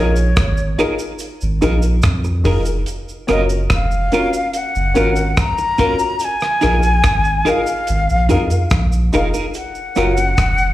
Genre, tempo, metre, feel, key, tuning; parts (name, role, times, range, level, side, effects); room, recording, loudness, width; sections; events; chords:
roots reggae; 72 BPM; 4/4; straight; A4 = 440 Hz
breathy silver concert flute; melody; 0.0-10.7 s; C#5 to A#5; -20 LUFS; left 2 dB; slapback echo, tape echo
clean electric guitar; accompaniment; 0.0-10.1 s; C#4 to A#4; -23 LUFS; right 4 dB; harmonic tremolo, slapback echo, tape echo
dark upright piano; stabs; 0.0-10.1 s; C#4 to A#4; -21 LUFS; left 3 dB; slapback echo
soft dub sub bass; bass; 0.0-10.7 s; E#1 to E#2; -17 LUFS; equal
damped 70s drum kit; drums; 0.2-10.6 s; hi-hat, kick drum, rim click; -19 LUFS; equal
cabasa; percussion; 0.2-10.7 s; -36 LUFS; right 4 dB
light reverb; live gig heard through the venue's PA, club reverb; -14 LUFS; side -14 dB against mid
0.0-10.7 A section
0.0 A#7sus4; 2.9 F#maj7; 6.2 A#7sus4; 9.5 F#maj7